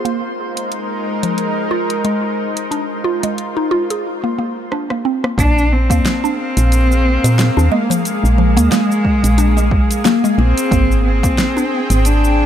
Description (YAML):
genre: organic downtempo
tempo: 90 BPM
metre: 4/4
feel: swing 56% on 16ths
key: Bb mixolydian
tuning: A4 = 441 Hz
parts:
  - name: bowed-like drone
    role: sustained chords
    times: 0.0-12.5 s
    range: Ab3 to G5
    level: -22 LUFS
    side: equal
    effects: built-in reverb, sidechain pumping
  - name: mallet-like synth pluck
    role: arpeggios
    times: 0.0-12.2 s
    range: F3 to Ab4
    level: -20 LUFS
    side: equal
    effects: chorus, phaser, tape echo
  - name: drifting glass-harmonics texture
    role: texture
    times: 0.0-4.1 s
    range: C5 to C6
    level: -30 LUFS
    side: left 2 dB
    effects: chorus, built-in reverb
  - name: deep house drum kit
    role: drums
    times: 0.1-12.4 s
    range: hi-hat, rim click, shaker, snare drum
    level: -21 LUFS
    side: right 1 dB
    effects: overdrive
  - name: dark cello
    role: melody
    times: 5.4-12.5 s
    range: Ab3 to D4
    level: -18 LUFS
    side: left 1 dB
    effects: tape echo
  - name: woody FM bass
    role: bass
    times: 5.4-12.5 s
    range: Ab1 to Bb2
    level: -14 LUFS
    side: equal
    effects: sidechain pumping
  - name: electronic kick drum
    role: drums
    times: 5.4-11.4 s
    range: none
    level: -17 LUFS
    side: equal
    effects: overdrive
room: little or no reverb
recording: none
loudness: -13 LUFS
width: side -10 dB against mid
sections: 0.0-5.4 A section; 5.4-12.5 B section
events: drum fill 4.7-5.4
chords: 0.0 Bb7sus4; 5.4 Bb7(no3); 10.7 Abmaj7